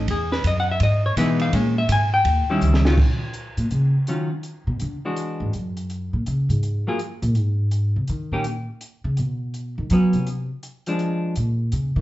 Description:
jazz, small-group swing and bop; 165 BPM; 4/4; swing 64% on 8ths; Eb minor; A4 = 436 Hz
hollow-body jazz guitar; accompaniment; 0.0-11.3 s; D#3 to G#5; -22 LUFS; left 1 dB
upright bass; bass; 0.0-12.0 s; C#2 to F#3; -21 LUFS; equal
compact cocktail drum kit; drums; 0.1-11.8 s; crash cymbal, hi-hat, kick drum, ride cymbal, snare drum; -27 LUFS; right 1 dB
moderate large studio reverb, RT60 0.8 s; heard from further back in the room, nothing above 7.8 kHz; -20 LUFS; side -16 dB against mid
0.0-3.0 A section; 3.0-12.0 A section
drum fill 2.6-3.0; upright bass solo 3.0-12.0
0.1 Emaj7; 1.5 A#m7b5; 2.3 D#7b9; 3.0 Ebm9; 4.4 Bm; 5.2 E9; 5.9 Gbadd9; 7.4 Ab; 8.1 Eb7; 8.8 Bsus2; 10.3 Fm; 11.0 Bb7

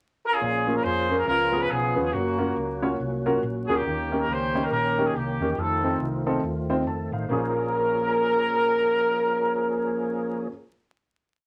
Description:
uptempo gospel; 140 BPM; 4/4; swing 59% on 8ths; Bb minor; A4 = 442 Hz
mellow horn section; melody; 0.3-10.5 s; Bb3 to C5; -26 LUFS; equal
dark baby grand piano; accompaniment; 0.4-10.5 s; Bb1 to A5; -30 LUFS; equal
overdriven tonewheel organ; sustained chords; 0.4-10.5 s; Eb3 to C5; -33 LUFS; equal; slow rotary speaker, chorus vibrato
hollow-body short-scale fingered electric bass; bass; 0.4-10.5 s; Gb1 to F2; -35 LUFS; equal
wet studio ambience, RT60 0.5 s; vinyl crackle; -25 LUFS; mono
0.0-0.4 pickup bar; 0.4-7.3 breakdown; 7.3-10.7 final chord
0.4 Bbm7; 1.3 Db7; 2.1 Gbmaj7; 3.9 Eb7; 5.6 F7; 7.3 Bbm7

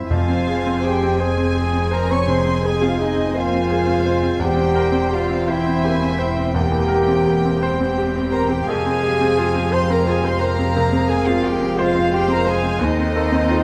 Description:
classical, romantic movement for piano and orchestra; 57 BPM (dotted quarters); 12/8; rubato; F minor; A4 = 440 Hz
clear concert grand piano; melody; 0.0-13.6 s; Eb2 to C5; -24 LUFS; equal
bright large flute ensemble; second line; 0.0-13.6 s; Eb5 to Db6; -31 LUFS; equal
warm chamber violin section; second line; 0.0-13.6 s; Eb5 to Db6; -32 LUFS; equal
warm clarinet; second line; 0.0-13.6 s; Eb4 to Db5; -31 LUFS; equal
mellow French horn section; sustained chords; 0.0-13.6 s; Eb4 to Db5; -26 LUFS; equal
rich symphonic cello section; bass; 0.0-13.6 s; Eb2 to G2; -29 LUFS; equal
warm symphonic violin section; melody; 0.1-13.6 s; C5 to Ab5; -34 LUFS; equal
dark symphonic viola section; accompaniment; 0.1-13.6 s; Ab3 to C5; -30 LUFS; equal
dark symphonic double bass section; bass; 0.1-13.6 s; E1 to Eb2; -28 LUFS; equal
timpani; percussion; 0.1-1.2 s; F2; -27 LUFS; equal
dark bassoon; accompaniment; 2.3-13.6 s; G3 to C4; -30 LUFS; equal
moderate recital hall reverb, RT60 1.6 s; -19 LUFS; mono
0.1-13.6 A section
0.1 Fm; 4.4 C7/E; 8.7 Fm; 12.8 F7/Eb (rootless)

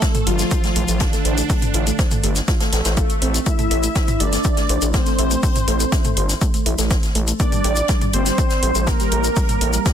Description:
melodic techno; 122 BPM; 4/4; straight; A phrygian; A4 = 440 Hz
expressive synth lead; melody; 0.0-9.9 s; D3 to E4; -25 LUFS; equal; ensemble chorus, sidechain pumping, dub echo
big bright polysynth; second line; 0.0-9.9 s; D4 to E5; -26 LUFS; right 1 dB; sidechain pumping, digital delay
soft round pluck; arpeggios; 0.0-9.9 s; G3 to C6; -27 LUFS; right 1 dB; analog chorus, sidechain pumping, digital delay
compact cocktail drum kit; drums; 0.0-9.9 s; hi-hat, snare drum; -30 LUFS; left 2 dB; high-pass filter on hats, high-pass filter on snare, high-pass filter on room
deep house drum kit; drums; 0.0-9.9 s; hi-hat, toms; -26 LUFS; right 1 dB
electronic kick drum; drums; 0.0-9.9 s; -20 LUFS; equal
tube shaker; percussion; 0.0-9.9 s; -29 LUFS; left 7 dB
gritty driven synth bass; bass; 0.3-9.8 s; G1 to A1; -21 LUFS; equal; sidechain pumping
swell; sound effects; 2.6-3.5 s; -30 LUFS; left 2 dB
small room reverb; dense, heavily limited modern master; -16 LUFS; side -9 dB against mid
0.0-9.9 A section
swell 2.6-3.5
0.0 F; 3.5 Am; 7.4 Gmadd9

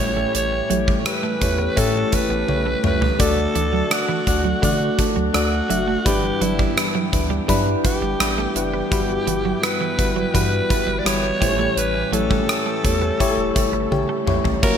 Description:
1980s-style pop; 84 BPM; 4/4; straight; A4 = 440 Hz
raspy alto saxophone; melody; 0.0-14.8 s; E4 to D5; -24 LUFS; equal; ping-pong delay
FM electric piano; accompaniment; 0.0-14.8 s; G2 to E5; -23 LUFS; left 3 dB; chorus
chorused pulse-width pad; sustained chords; 0.0-14.8 s; C#3 to G5; -28 LUFS; right 1 dB
twelve-string electric guitar; riff; 0.0-14.6 s; E3 to C#4; -29 LUFS; right 9 dB; wide subtle chorus
round analog bass; bass; 0.0-14.8 s; E1 to D3; -26 LUFS; equal
gated 80s drum kit; drums; 0.3-14.8 s; crash cymbal, hi-hat, kick drum, rim click, toms; -22 LUFS; equal; gated reverb
moderate plate reverb, RT60 3.0 s; bright 1980s-style digital production; -17 LUFS; side -8 dB against mid
0.0-14.6 A section
drum fill 2.5-3.2, 13.9-14.6
0.0 A7; 3.2 D; 6.1 G6; 8.9 Emadd9/G; 11.4 A7

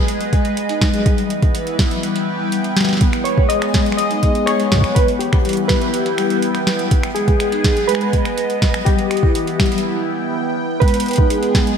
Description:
IDM; 123 BPM; 4/4; straight; G# harmonic minor; A4 = 437 Hz
phased analog pad; sustained chords; 0.0-11.8 s; E3 to G5; -22 LUFS; equal; phaser, chorus
bubbling stepped-filter texture; texture; 0.0-9.8 s; B3 to B4; -32 LUFS; right 1 dB; chorus, built-in reverb
electro analog drum machine; drums; 0.1-11.8 s; finger snaps, hi-hat, snare drum; -23 LUFS; equal; diffuse ambient delay
vibraphone with soft mallets; arpeggios; 0.3-11.7 s; G3 to G5; -22 LUFS; left 2 dB; diffuse ambient delay
electronic kick drum; drums; 0.3-11.6 s; -16 LUFS; equal; overdrive
warbly lo-fi synth keys; melody; 3.2-11.5 s; G4 to D#5; -21 LUFS; right 1 dB; chorus, ping-pong delay
wet lush hall reverb, RT60 2.6 s; dreamy mix soaked in reverb; -14 LUFS; side -7 dB against mid
0.0-10.8 A section
break 9.8-10.8
0.0 G#m; 1.1 Em; 3.0 G#m; 5.0 Em; 6.9 G#m; 8.9 Em; 10.8 G#m

